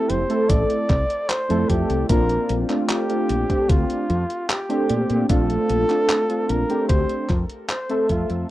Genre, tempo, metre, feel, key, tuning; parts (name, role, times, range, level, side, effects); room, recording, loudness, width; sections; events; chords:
vaporwave; 75 BPM; 4/4; straight; A4 = 440 Hz
breathy flugelhorn; melody; 0.0-8.5 s; F4 to D5; -24 LUFS; equal; tape echo
warbly lo-fi synth keys; accompaniment; 0.0-8.5 s; A3 to E5; -23 LUFS; equal; analog chorus, vintage 12-bit sampler grit
woody fretless electric bass; bass; 0.1-8.4 s; F1 to Bb2; -23 LUFS; equal; analog chorus
detuned 8-bit digital drum machine; drums; 0.1-8.5 s; handclaps, hi-hat; -28 LUFS; equal
electronic kick drum; drums; 0.5-8.3 s; -22 LUFS; equal
light reverb; rough home demo mix, cassette tape; -18 LUFS; side -15 dB against mid
0.0-8.5 A section
fade-out 6.4-8.5
0.0 Fmaj9; 2.1 Bbmaj9